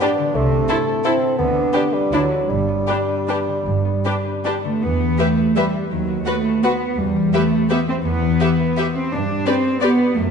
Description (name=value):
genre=classical, orchestral ballroom waltz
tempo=146-185 BPM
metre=3/4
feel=rubato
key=G major, E minor from 4.8 s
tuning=A4 = 440 Hz
part: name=warm symphonic violin section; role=melody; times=0.0-9.9 s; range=B4 to F#5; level=-28 LUFS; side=left 5 dB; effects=none
part: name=warm symphonic violin section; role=second line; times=0.0-9.9 s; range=E4 to B4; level=-27 LUFS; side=left 4 dB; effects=none
part: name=mellow bassoon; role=accompaniment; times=0.0-4.6 s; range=F#3 to D4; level=-21 LUFS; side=right 1 dB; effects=none
part: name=rich studio viola section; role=accompaniment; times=0.0-9.9 s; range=D4 to G4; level=-26 LUFS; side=right 1 dB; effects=none
part: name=concert harp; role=arpeggios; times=0.0-10.3 s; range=F#2 to C5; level=-23 LUFS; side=left 6 dB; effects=none
part: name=warm chamber double bass section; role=bass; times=0.4-10.3 s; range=G1 to G2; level=-26 LUFS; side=right 4 dB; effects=none
part: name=warm symphonic cello section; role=bass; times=0.4-10.3 s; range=G2 to D4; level=-21 LUFS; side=right 3 dB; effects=none
room=moderate scoring stage reverb, RT60 1.6 s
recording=nothing above 10.3 kHz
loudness=-16 LUFS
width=side -6 dB against mid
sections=0.0-4.8 A section; 4.8-10.3 B section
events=none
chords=0.4 Am/C; 1.4 G/D; 2.1 D69; 2.5 G; 4.8 Em; 5.9 B/D#; 7.0 Em; 9.1 G